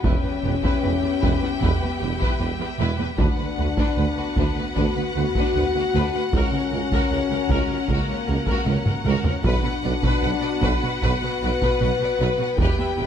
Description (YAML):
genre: cinematic, epic orchestral film score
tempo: 76 BPM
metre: 4/4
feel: straight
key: B harmonic minor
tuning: A4 = 441 Hz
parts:
  - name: warm symphonic violin section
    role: melody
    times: 0.0-13.1 s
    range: F#5 to G5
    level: -33 LUFS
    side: left 3 dB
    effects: none
  - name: warm symphonic violin section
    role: second line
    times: 0.0-13.1 s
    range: D4 to F#5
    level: -34 LUFS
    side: left 3 dB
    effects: none
  - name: mellow French horn section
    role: sustained chords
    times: 0.0-13.1 s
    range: A#3 to B4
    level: -26 LUFS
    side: left 6 dB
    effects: none
  - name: rich symphonic string section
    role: sustained chords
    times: 0.0-13.1 s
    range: B3 to G5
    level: -31 LUFS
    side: left 1 dB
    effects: none
  - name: rich studio cello section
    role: bass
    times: 0.0-13.1 s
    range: C#2 to B2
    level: -29 LUFS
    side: right 3 dB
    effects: none
  - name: rich symphonic double bass section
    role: bass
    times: 0.0-13.1 s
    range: E1 to D2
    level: -27 LUFS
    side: right 3 dB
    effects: none
  - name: solo taiko drums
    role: drums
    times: 0.0-13.1 s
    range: none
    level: -25 LUFS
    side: equal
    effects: none
  - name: warm symphonic viola section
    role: accompaniment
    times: 0.1-13.1 s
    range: A#4 to B4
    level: -33 LUFS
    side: equal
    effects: none
  - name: warm tuba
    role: bass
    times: 0.1-13.1 s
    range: E1 to D2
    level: -30 LUFS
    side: right 5 dB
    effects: none
room: light reverb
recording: close, detailed microphones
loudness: -20 LUFS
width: side -9 dB against mid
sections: 0.0-13.1 A section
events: drum fill 8.7-9.4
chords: 0.0 Em; 3.2 Bm/D; 6.3 F#/C#; 9.4 Bm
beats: | 0.04 0.83 1.62 2.41 | 3.19 3.98 4.76 5.55 | 6.33 7.12 7.89 8.67 | 9.45 10.23 11.03 11.81 | 12.59